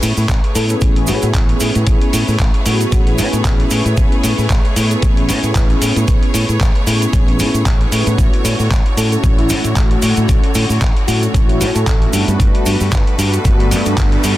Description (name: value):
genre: nu-disco, nu disco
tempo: 114 BPM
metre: 4/4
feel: swing 56% on 16ths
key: A major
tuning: A4 = 440 Hz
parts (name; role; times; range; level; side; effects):
- bright studio string section; sustained chords; 0.0-14.4 s; D3 to C#5; -24 LUFS; equal; sidechain pumping
- fingered electric bass; bass; 0.0-14.3 s; G1 to A2; -17 LUFS; equal; sidechain pumping
- dusty soul sampler-style drum kit; drums; 0.0-14.4 s; handclaps, hi-hat; -22 LUFS; left 1 dB; none
- cabasa; percussion; 0.0-14.4 s; none; -26 LUFS; right 7 dB; none
- electronic kick drum; drums; 0.3-14.1 s; none; -14 LUFS; equal; none
- warm analog pad; accompaniment; 0.5-14.4 s; A3 to B4; -20 LUFS; equal; chorus, sidechain pumping, digital delay
- wide unison lead; melody; 0.6-3.4, 9.0-12.1 s; E4 to A4; -26 LUFS; left 1 dB; digital delay
- riser; sound effects; 13.1-14.4 s; none; -31 LUFS; left 1 dB; none
room: little or no reverb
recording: dense, heavily limited modern master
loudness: -12 LUFS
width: side -15 dB against mid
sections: 0.0-14.4 A section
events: riser 13.1-14.4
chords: 0.0 Amaj9; 8.2 Dmaj7/A; 12.1 Gmaj9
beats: 0.29 0.82 1.34 | 1.87 2.40 2.92 3.45 | 3.98 4.50 5.03 5.55 | 6.08 6.61 7.13 7.66 | 8.19 8.71 9.24 9.76 | 10.29 10.82 11.34 11.87 | 12.40 12.92 13.45 13.97